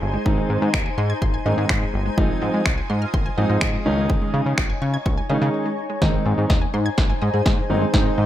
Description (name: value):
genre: dance-pop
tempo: 125 BPM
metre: 4/4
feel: straight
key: unclear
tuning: A4 = 440 Hz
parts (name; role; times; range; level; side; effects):
- shimmering ambient pad; sustained chords; 0.0-8.3 s; Eb4 to Bb5; -29 LUFS; left 2 dB; chorus, built-in reverb, sidechain pumping
- chorused synth bass; bass; 0.0-8.3 s; G1 to Db3; -22 LUFS; equal; sidechain pumping
- wide unison pluck; arpeggios; 0.1-8.2 s; Eb3 to Ab6; -30 LUFS; left 1 dB; sidechain pumping, ping-pong delay
- warm grand piano; accompaniment; 0.3-8.3 s; Eb3 to Eb4; -24 LUFS; right 2 dB; sidechain pumping
- house drum kit; drums; 0.3-8.0 s; finger snaps, kick drum, snare drum; -21 LUFS; equal; none
room: digital ambience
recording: none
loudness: -18 LUFS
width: side -12 dB against mid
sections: 0.0-6.0 A section; 6.0-8.3 B section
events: break 5.5-6.0; build-up 6.0-8.3; drum fill 6.0-8.3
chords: 0.0 Ab; 2.2 Fm7/Ab; 3.9 Dbsus2; 6.0 Ab